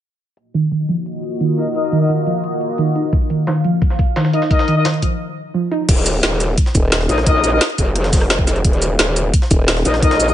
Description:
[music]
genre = dark technical drum and bass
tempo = 174 BPM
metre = 4/4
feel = straight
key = Eb minor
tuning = A4 = 440 Hz
[part]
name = sweeping resonant pad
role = sustained chords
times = 0.4-5.2 s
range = Bb3 to F5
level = -24 LUFS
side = equal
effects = chorus, sidechain pumping
[part]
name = drum and bass drum kit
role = drums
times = 0.4-10.3 s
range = crash cymbal, hi-hat, rim click, shaker, snare drum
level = -19 LUFS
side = equal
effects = overdrive, small room ambience
[part]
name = soft round pluck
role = arpeggios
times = 0.5-5.8 s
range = Eb3 to Eb4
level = -18 LUFS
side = right 1 dB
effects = lush chorus, sidechain pumping, ping-pong delay
[part]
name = warm brass ensemble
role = stabs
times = 1.6-2.1, 4.3-4.9, 7.1-7.6, 9.9-10.3 s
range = Eb4 to Eb5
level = -20 LUFS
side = left 3 dB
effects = low-pass filter, ping-pong delay
[part]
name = electronic kick drum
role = drums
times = 3.1-10.1 s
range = none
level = -15 LUFS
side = equal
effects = overdrive, small room ambience
[part]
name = jungle sampler-style drum kit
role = drums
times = 3.1-10.3 s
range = hi-hat, snare drum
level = -26 LUFS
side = equal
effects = overdrive, high-pass filter on hats, small room ambience, high-pass filter on snare
[part]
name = growl bass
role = bass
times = 5.9-10.3 s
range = Eb1 to Bb1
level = -17 LUFS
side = equal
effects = chorus, overdrive, sidechain pumping
[part]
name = formant-sweep wobble bass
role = bass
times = 6.7-7.1, 9.5-9.8 s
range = Eb1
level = -17 LUFS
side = equal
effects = chorus, tube saturation
[sound]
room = light reverb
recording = low-pass filter, nothing above 10.3 kHz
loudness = -14 LUFS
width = side -11 dB against mid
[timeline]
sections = 0.4-5.9 A section; 5.9-10.3 B section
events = filter sweep on synth pluck 0.4-5.9; filter sweep 0.4-5.9; break 5.2-5.9; drop 5.9-10.3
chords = 0.4 Ebmadd9; 5.9 Ebsus2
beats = | 0.37 0.71 1.06 1.40 | 1.75 2.09 2.44 2.78 | 3.13 3.47 3.82 4.16 | 4.51 4.85 5.20 5.54 | 5.89 6.23 6.58 6.92 | 7.27 7.61 7.96 8.30 | 8.65 8.99 9.34 9.68 | 10.03

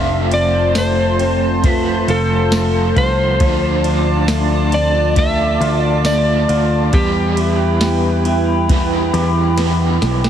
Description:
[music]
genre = dream pop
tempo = 68 BPM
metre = 4/4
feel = straight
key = unclear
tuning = A4 = 445 Hz
[part]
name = electric slide guitar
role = melody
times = 0.0-9.5 s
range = G4 to E5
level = -20 LUFS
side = equal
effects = ping-pong delay
[part]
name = crunchy overdriven guitar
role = accompaniment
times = 0.0-10.3 s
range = D3 to F4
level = -24 LUFS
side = right 3 dB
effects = tremolo, wide subtle chorus
[part]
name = hollow soft pad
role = sustained chords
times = 0.0-10.3 s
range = E4 to D6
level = -22 LUFS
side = right 1 dB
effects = chorus
[part]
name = electric guitar at the edge of break-up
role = arpeggios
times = 0.0-10.3 s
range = F3 to G4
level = -21 LUFS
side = left 2 dB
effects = wide subtle chorus, ping-pong delay
[part]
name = picked electric bass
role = bass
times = 0.0-10.3 s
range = F1 to E2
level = -18 LUFS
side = equal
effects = none
[part]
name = soft vintage rhythm box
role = drums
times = 0.3-10.3 s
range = kick drum, ride cymbal, snare drum, tambourine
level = -20 LUFS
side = equal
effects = none
[sound]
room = light reverb, digital ambience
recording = heavily compressed radio sound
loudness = -13 LUFS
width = side -9 dB against mid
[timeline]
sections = 0.0-10.3 A section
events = drum fill 9.6-10.3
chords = 0.0 F; 3.4 Dm; 6.9 Em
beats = 0.75 1.64 2.52 | 3.40 4.28 5.17 6.05 | 6.93 7.81 8.70 9.58

